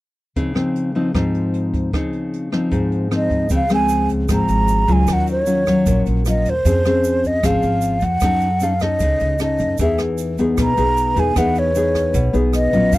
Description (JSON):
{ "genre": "bossa nova", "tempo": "153 BPM", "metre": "4/4", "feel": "straight", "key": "Db major", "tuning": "A4 = 440 Hz", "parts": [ { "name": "nylon-string guitar", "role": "accompaniment", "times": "0.4-13.0 s", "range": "Ab2 to A4", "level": "-19 LUFS", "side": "left 2 dB", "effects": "none" }, { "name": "jazz brush drum kit", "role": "drums", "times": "0.4-13.0 s", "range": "hi-hat, kick drum, rim click", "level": "-25 LUFS", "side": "right 1 dB", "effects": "none" }, { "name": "mellow hollow concert flute", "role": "melody", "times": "3.2-13.0 s", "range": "C5 to Bb5", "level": "-19 LUFS", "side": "right 1 dB", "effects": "none" }, { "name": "upright bass", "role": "bass", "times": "3.5-13.0 s", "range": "Ab1 to Gb2", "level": "-21 LUFS", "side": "right 1 dB", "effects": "none" }, { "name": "tube shaker", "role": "percussion", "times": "3.5-13.0 s", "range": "none", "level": "-38 LUFS", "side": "right 16 dB", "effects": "none" } ], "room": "little or no reverb", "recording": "dry, close 1970s-style studio recording", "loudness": "-16 LUFS", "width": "side -18 dB against mid", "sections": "0.4-3.5 A section; 3.5-13.0 B section", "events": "none", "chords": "0.4 Dbmaj9; 3.5 Dbmaj7; 5.1 Ebm9; 6.6 Dbmaj7/F; 8.2 Gbm6; 9.8 Emaj7" }